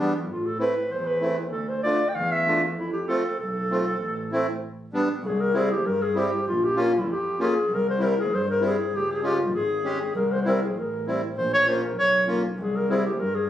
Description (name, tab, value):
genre	klezmer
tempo	98 BPM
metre	2/4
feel	straight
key	A minor, C phrygian dominant from 5.2 s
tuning	A4 = 443 Hz
part	accordion	accompaniment	0.0-13.0 s	G3 to G4	-26 LUFS	equal	none
part	warm double bass	bass	0.0-13.5 s	Ab1 to A2	-30 LUFS	left 1 dB	none
part	breathy clarinet	melody	0.3-13.5 s	E4 to G5	-24 LUFS	equal	plate reverb
room	wet studio ambience, RT60 0.5 s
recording	recorded on a phone in the room, studio reverb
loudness	-22 LUFS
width	side -11 dB against mid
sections	0.0-5.2 A section; 5.2-13.5 B section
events	none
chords	0.3 Am; 1.5 Dm; 2.8 F; 4.0 Am; 4.6 G; 5.2 C; 6.5 Bbm; 7.7 C; 8.9 Db5; 10.1 C; 11.4 Bbm; 12.6 C